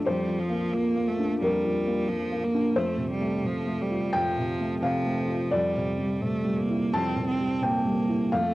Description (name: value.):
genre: neoclassical piano and strings.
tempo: 88 BPM.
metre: 4/4.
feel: rubato.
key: unclear.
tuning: A4 = 440 Hz.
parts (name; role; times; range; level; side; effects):
clear cello; second line; 0.0-8.5 s; F3 to C4; -29 LUFS; right 2 dB; none.
felt-muted upright piano; accompaniment; 0.0-8.5 s; F2 to A5; -26 LUFS; left 1 dB; none.
room: light reverb.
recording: home recording on cassette.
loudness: -24 LUFS.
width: side -17 dB against mid.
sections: 0.0-8.5 A section.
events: none.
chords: 0.1 Bb/F; 2.8 F; 5.5 Cadd9/F.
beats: | 0.06 0.73 1.41 2.08 | 2.76 3.44 4.15 4.83 | 5.51 6.21 6.92 7.62 | 8.31.